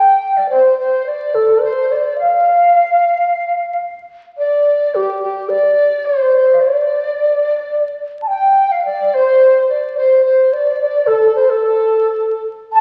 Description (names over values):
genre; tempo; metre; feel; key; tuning
chinese traditional, Chinese chamber ensemble; 108 BPM; 4/4; straight; D yu mode; A4 = 438 Hz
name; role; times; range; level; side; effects
low xiao; melody; 0.0-12.8 s; G4 to A5; -15 LUFS; equal; none
large dizi; second line; 0.0-12.8 s; G4 to A5; -21 LUFS; equal; none
room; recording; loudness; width
wet recital hall reverb, RT60 1.7 s; very old 78 rpm record, vinyl crackle; -14 LUFS; mono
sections
0.0-8.9 A section; 8.9-12.8 B section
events
none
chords
none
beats
0.51 1.08 1.64 | 2.19 2.75 3.29 3.84 | 4.39 4.94 5.49 6.05 | 6.61 7.17 7.73 8.30 | 8.86 9.42 9.98 10.54 | 11.09 11.63 12.18 12.72